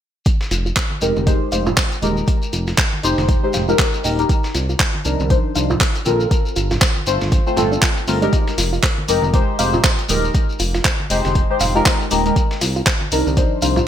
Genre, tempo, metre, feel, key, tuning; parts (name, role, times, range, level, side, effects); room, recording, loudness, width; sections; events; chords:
deep house; 119 BPM; 4/4; swing 58% on 16ths; F dorian; A4 = 440 Hz
dusty soul sampler-style drum kit; drums; 0.3-13.8 s; hi-hat, snare drum; -29 LUFS; equal; high-pass filter on hats, high-pass filter on snare, gated reverb
electronic kick drum; drums; 0.3-13.5 s; -18 LUFS; equal; overdrive
shekere; percussion; 0.3-13.9 s; -28 LUFS; left 3 dB
soft round pluck; arpeggios; 0.5-13.8 s; D4 to F5; -27 LUFS; right 2 dB; chorus, sidechain pumping, digital delay
smooth synth bass; bass; 0.5-13.8 s; Eb1 to C2; -22 LUFS; equal; sidechain pumping
deep house drum kit; drums; 0.8-13.7 s; handclaps, hi-hat; -21 LUFS; equal; overdrive, gated reverb
congas; percussion; 0.9-13.8 s; -29 LUFS; right 2 dB
deep mellow chord stab; stabs; 1.0-13.9 s; F3 to C5; -20 LUFS; left 1 dB; chorus, phaser, sidechain pumping, ping-pong delay
light reverb, digital ambience; bright 1980s-style digital production; -15 LUFS; side -10 dB against mid
0.3-13.9 A section
filter sweep on synth arpeggio sound 0.3-13.9
0.3 Fm11; 4.3 Cm11; 6.3 Gm11; 8.3 Fm11; 12.4 Cm11